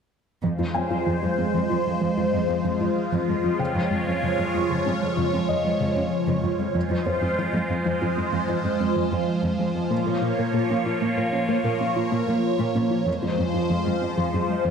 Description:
cinematic; 95 BPM; 5/4; straight; F minor; A4 = 437 Hz
phased analog pad; sustained chords; 0.4-14.7 s; F3 to Db5; -24 LUFS; equal; phaser, chorus
tight sequenced synth; arpeggios; 0.4-14.7 s; Db3 to Bb4; -29 LUFS; left 1 dB; chorus, digital delay
warm symphonic cello section; bass; 0.4-14.7 s; F2 to Bb2; -28 LUFS; right 1 dB
felt-muted upright piano; texture; 0.7-9.9 s; C5 to Ab5; -33 LUFS; left 3 dB; digital delay
wet scoring stage reverb, RT60 1.8 s; -21 LUFS; side -6 dB against mid
0.4-14.7 A section
build-up 0.4-14.7
0.4 Fm; 3.6 Db/F; 6.8 Fm; 9.9 Bbm; 13.1 Fm
| 0.44 1.07 1.70 2.33 2.96 | 3.60 4.23 4.86 5.49 6.12 | 6.75 7.38 8.02 8.65 9.28 | 9.91 10.54 11.17 11.80 12.44 | 13.07 13.70 14.33

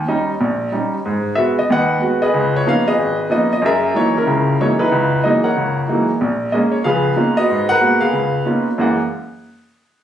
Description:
jazz; 186 BPM; 4/4; swing 62% on 8ths; F# mixolydian; A4 = 440 Hz
clear grand piano; solo; 0.0-9.0 s; G#1 to F#5; -14 LUFS; equal
moderate club reverb, RT60 0.5 s; recorded on a phone in the room, studio reverb, compression; -14 LUFS; side -10 dB against mid
0.0-6.2 A section; 6.2-8.8 B section; 8.8-10.0 C section
0.0 D#7; 1.0 G#m7; 2.3 C#13; 3.6 F#13; 6.2 A#m7; 6.8 C#13; 7.5 G#m9; 8.1 C#13; 8.8 F#9
0.07 0.39 0.71 | 1.03 1.36 1.68 2.00 | 2.32 2.65 2.97 3.29 | 3.61 3.94 4.26 4.58 | 4.90 5.22 5.55 5.87 | 6.19 6.51 6.84 7.16 | 7.48 7.81 8.13 8.45 | 8.77

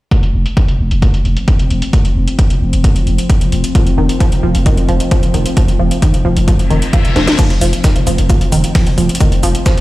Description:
driving peak-time techno; 132 BPM; 4/4; straight; A4 = 440 Hz
deep dark ambient pad; drone; 0.8-9.8 s; F3 to C4; -21 LUFS; left 2 dB; chorus, built-in reverb, sidechain pumping
electronic kick drum; drums; 0.1-9.8 s; -12 LUFS; equal
techno drum kit; drums; 0.1-9.8 s; crash cymbal, hi-hat, snare drum; -22 LUFS; left 1 dB; low-pass filter on hats, low-pass filter on snare, low-pass filter on cymbals, low-pass filter on room
growling 808-style bass; bass; 0.2-9.8 s; F1; -16 LUFS; equal; overdrive, sidechain pumping, low-pass filter
analog pluck; riff; 3.8-9.7 s; Eb3 to F3; -18 LUFS; right 1 dB; chorus, phaser, overdrive, sidechain pumping, tape echo
reverse cymbal; sound effects; 6.6-7.4 s; -25 LUFS; left 4 dB
breakbeat sampler-style drum kit; drums; 7.4-9.8 s; hi-hat, shaker, snare drum; -26 LUFS; equal; sidechain pumping on perc, high-pass filter on perc, high-pass filter on snare, sidechain pumping on hats, high-pass filter on hats, high-pass filter on room
little or no reverb; played on a big sound system in a bare room, stone room reverb; -10 LUFS; side -18 dB against mid
0.1-7.4 A section; 7.4-9.8 B section
filter sweep on drum 0.1-7.4; reverse cymbal 6.6-7.4; drum fill 7.2
0.1 F5
| 0.11 0.57 1.02 1.48 | 1.93 2.39 2.84 3.30 | 3.75 4.21 4.66 5.11 | 5.57 6.02 6.48 6.93 | 7.39 7.84 8.30 8.75 | 9.21 9.66

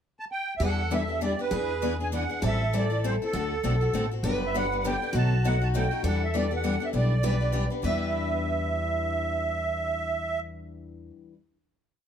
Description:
acoustic string swing (jazz manouche); 200 BPM; 3/4; swing 58% on 8ths; E minor; A4 = 440 Hz
musette accordion; melody; 0.2-10.4 s; A4 to A5; -30 LUFS; right 4 dB
picked steel-string acoustic guitar; second line; 0.6-11.1 s; F#4 to B4; -34 LUFS; left 1 dB
picked steel-string acoustic guitar; accompaniment; 0.6-11.4 s; B2 to A4; -34 LUFS; left 8 dB
picked steel-string acoustic guitar; accompaniment; 0.6-11.3 s; B2 to B4; -34 LUFS; left 1 dB
upright bass; bass; 0.6-11.1 s; G1 to E2; -29 LUFS; equal
light reverb; -25 LUFS; side -8 dB against mid
0.0-0.6 pickup bar; 0.6-7.8 A section; 7.8-9.6 final chord
0.0 N.C.; 0.6 Em7; 1.5 E7; 2.4 Am7; 3.3 D7; 4.2 Gmaj7; 5.1 B7; 6.0 Em7
0.01 0.31 | 0.61 0.92 1.22 | 1.52 1.82 2.13 | 2.43 2.73 3.04 | 3.34 3.64 3.94 | 4.24 4.54 4.84 | 5.14 5.44 5.74 | 6.04 6.34 6.64 | 6.94 7.24 7.54 | 7.84 8.13 8.43 | 8.73 9.03 9.33

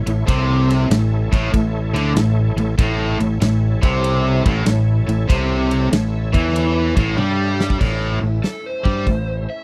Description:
blues rock power trio and southern rock; 96 BPM; 4/4; swing 66% on 8ths; A mixolydian; A4 = 437 Hz
overdriven tonewheel organ; sustained chords; 0.0-9.6 s; A3 to E5; -33 LUFS; equal; slow rotary speaker, chorus vibrato
growling fingered electric bass; bass; 0.0-9.5 s; A1 to G2; -22 LUFS; equal; overdrive
biting overdriven guitar; riff; 0.1-9.4 s; A2 to G3; -22 LUFS; equal
big rock drum kit; drums; 0.1-9.3 s; crash cymbal, hi-hat, kick drum, ride cymbal, snare drum, toms; -20 LUFS; equal
overdriven slide guitar; melody; 8.4-9.6 s; A4 to E5; -29 LUFS; equal
light reverb; dry, close 1970s-style studio recording; -18 LUFS; mono
0.0-7.8 A section; 7.8-9.6 B section
drum fill 7.2-7.8
0.0 A
| 0.28 0.90 1.53 2.16 | 2.79 3.41 4.04 4.67 | 5.29 5.92 6.55 7.18 | 7.80 8.43 9.06

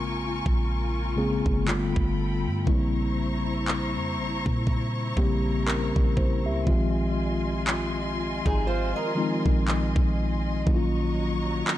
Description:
contemporary R&B; 60 BPM; 4/4; swing 58% on 16ths; A4 = 439 Hz
mellow tine electric piano; accompaniment; 0.0-11.8 s; Db3 to E5; -28 LUFS; left 2 dB; medium stereo tremolo
dark studio string section; sustained chords; 0.0-11.8 s; Gb3 to Db6; -33 LUFS; left 2 dB; sidechain pumping
clean 808-style bass; bass; 0.0-11.6 s; G1 to Bb2; -28 LUFS; equal
trap drum kit; drums; 0.5-11.8 s; handclaps, kick drum; -27 LUFS; equal; overdrive, vintage 12-bit sampler grit
fingerpicked steel-string acoustic guitar; arpeggios; 8.5-10.4 s; Eb4 to Eb5; -32 LUFS; right 3 dB; digital delay
small room ambience; dark, warm production; -23 LUFS; side -13 dB against mid
0.0-11.8 A section
0.0 Bbm7; 1.7 G9; 2.7 C7b9/Bb; 6.7 Fm7; 10.7 Ebm7/Bb
0.67 1.67 | 2.67 3.67 4.67 5.67 | 6.67 7.67 8.67 9.67 | 10.67 11.67

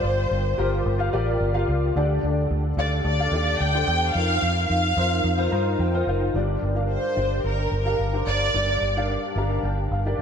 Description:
piano-driven pop; 109 BPM; 4/4; straight; G minor; A4 = 440 Hz
warm studio violin section; melody; 0.0-9.1 s; Bb4 to G5; -25 LUFS; equal
dark concert grand piano; accompaniment; 0.0-10.2 s; G2 to Bb5; -26 LUFS; left 2 dB; ensemble chorus
vintage muted fingered electric bass; bass; 0.0-10.2 s; F#1 to G2; -24 LUFS; equal
moderate lush hall reverb, RT60 2.8 s; dreamy mix soaked in reverb; -21 LUFS; side -7 dB against mid
0.0-6.3 A section; 6.3-10.2 B section
grand piano fill 5.2-6.3, 9.1-10.2
0.0 Gm7; 2.0 Dsus4; 4.1 F7sus4; 6.3 Gm
0.30 0.85 1.40 | 1.95 2.50 3.05 3.60 | 4.15 4.70 5.25 5.80 | 6.35 6.89 7.44 7.99 | 8.54 9.09 9.64 10.19

